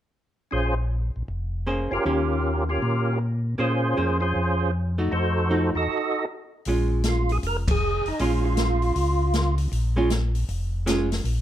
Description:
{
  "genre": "soul jazz organ trio",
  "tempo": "157 BPM",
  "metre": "4/4",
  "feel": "swing 64% on 8ths",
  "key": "Bb dorian, Bb minor from 6.7 s",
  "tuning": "A4 = 440 Hz",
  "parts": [
    { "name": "percussive tonewheel organ", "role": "melody", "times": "0.5-9.6 s", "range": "Db4 to Eb5", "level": "-26 LUFS", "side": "right 1 dB", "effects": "overdrive, chorus vibrato, slow rotary speaker, plate reverb" },
    { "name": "mellow tonewheel organ", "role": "bass", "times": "0.5-11.4 s", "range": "F1 to Bb2", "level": "-24 LUFS", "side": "equal", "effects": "slow rotary speaker" },
    { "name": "archtop guitar, miked and amplified", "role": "accompaniment", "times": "1.7-11.1 s", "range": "Eb3 to C5", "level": "-27 LUFS", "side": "right 1 dB", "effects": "none" },
    { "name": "open jazz drum kit", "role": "drums", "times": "6.7-11.4 s", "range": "hi-hat, kick drum, ride cymbal, snare drum", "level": "-30 LUFS", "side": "left 1 dB", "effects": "none" }
  ],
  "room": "light reverb",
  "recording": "dark, warm production",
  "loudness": "-22 LUFS",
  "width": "side -11 dB against mid",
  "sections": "0.5-6.7 A section; 6.7-11.4 B section",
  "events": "stop 5.9-6.7; band accent 7.6",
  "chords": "0.5 Bbm9; 2.1 Eb7; 3.6 Bbm9; 5.1 F7b9; 6.7 Bbm7"
}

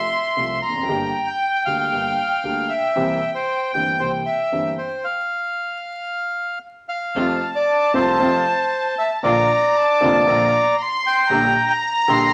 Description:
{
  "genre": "tango",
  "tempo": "115 BPM",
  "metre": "4/4",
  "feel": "rubato",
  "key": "F major",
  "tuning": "A4 = 440 Hz",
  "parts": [
    { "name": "bandoneon", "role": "melody", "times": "0.0-12.3 s", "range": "C5 to C6", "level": "-22 LUFS", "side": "equal", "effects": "none" },
    { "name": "warm chamber violin section", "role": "second line", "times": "0.0-12.3 s", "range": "G5 to C6", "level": "-25 LUFS", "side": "equal", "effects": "none" },
    { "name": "warm upright piano", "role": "accompaniment", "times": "0.0-12.3 s", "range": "F1 to G4", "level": "-26 LUFS", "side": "equal", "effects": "none" },
    { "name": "upright bass", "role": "bass", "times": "0.0-12.3 s", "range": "E1 to F2", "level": "-38 LUFS", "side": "equal", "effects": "none" },
    { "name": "rich studio string section", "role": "stabs", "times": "7.2-12.3 s", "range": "A3 to G4", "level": "-33 LUFS", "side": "equal", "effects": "none" }
  ],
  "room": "wet studio reverb, RT60 0.7 s",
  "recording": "vinyl crackle",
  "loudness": "-20 LUFS",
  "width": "mono",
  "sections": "0.0-7.2 A section; 7.2-12.3 B section",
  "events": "stop 5.0-7.2",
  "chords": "0.0 F; 0.9 Gm; 3.0 C7; 5.0 N.C.; 7.2 F; 9.2 Bb; 11.3 Gm/Bb"
}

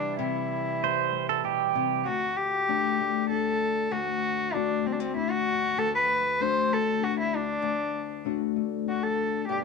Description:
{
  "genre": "acoustic folk duo or small band",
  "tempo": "97 BPM",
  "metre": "3/4",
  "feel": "straight",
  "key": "D mixolydian",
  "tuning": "A4 = 440 Hz",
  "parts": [
    { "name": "warm cello", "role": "melody", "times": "0.0-9.6 s", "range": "C4 to C5", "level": "-27 LUFS", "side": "left 1 dB", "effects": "none" },
    { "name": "nylon-string guitar", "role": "accompaniment", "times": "0.0-9.6 s", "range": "D2 to G4", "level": "-30 LUFS", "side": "left 13 dB", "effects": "none" },
    { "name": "pedal harmonium", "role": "sustained chords", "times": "0.0-2.0, 9.5-9.6 s", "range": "B2 to E4", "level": "-35 LUFS", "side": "right 13 dB", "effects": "none" },
    { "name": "pedal steel guitar", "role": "second line", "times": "0.8-2.1 s", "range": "G4 to C5", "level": "-26 LUFS", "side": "right 15 dB", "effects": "none" }
  ],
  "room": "moderate echo chamber reverb, RT60 1.7 s, small room ambience",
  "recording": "1960s-style stereo with parts hard left and right",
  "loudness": "-25 LUFS",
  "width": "side -4 dB against mid",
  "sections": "0.0-2.1 A section; 2.1-9.6 A section",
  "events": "none",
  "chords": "0.0 C; 2.1 D"
}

